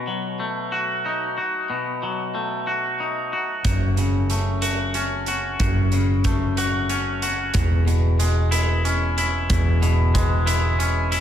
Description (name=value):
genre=post-rock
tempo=62 BPM (dotted quarters)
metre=6/8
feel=straight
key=E major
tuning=A4 = 443 Hz
part: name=twangy electric guitar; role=arpeggios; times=0.0-11.2 s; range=E2 to F#4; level=-23 LUFS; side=left 2 dB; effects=digital delay, slapback echo
part: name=hollow-body short-scale fingered electric bass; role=bass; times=3.6-11.2 s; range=E1 to F#1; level=-21 LUFS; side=right 1 dB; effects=none
part: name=big rock drum kit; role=drums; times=3.6-11.2 s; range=hi-hat, kick drum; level=-26 LUFS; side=right 1 dB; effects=none
room=moderate lush hall reverb, RT60 1.8 s, small room reverb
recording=big arena sound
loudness=-19 LUFS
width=side -10 dB against mid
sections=0.0-11.2 A section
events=none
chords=0.0 B7; 3.7 F#m; 7.6 E6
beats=0.73 | 1.71 2.68 | 3.65 4.63 | 5.60 6.58 | 7.55 8.53 | 9.50 10.47